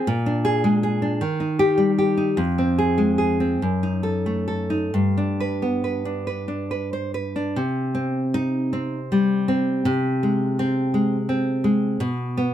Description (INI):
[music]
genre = romantic piece for solo classical guitar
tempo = 43-57 BPM (dotted quarters)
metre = 6/8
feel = rubato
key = C minor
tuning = A4 = 440 Hz
[part]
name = nylon-string guitar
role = solo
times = 0.0-12.5 s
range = F2 to C5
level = -20 LUFS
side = equal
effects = none
[sound]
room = light reverb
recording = close, detailed microphones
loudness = -20 LUFS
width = side -11 dB against mid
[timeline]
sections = 0.0-7.6 A section; 7.6-12.5 B section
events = none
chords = 0.1 Bb7; 1.2 Eb; 2.4 Fm; 3.6 F#m6; 4.9 G; 7.6 Cm; 9.9 Ab/C; 12.0 N.C.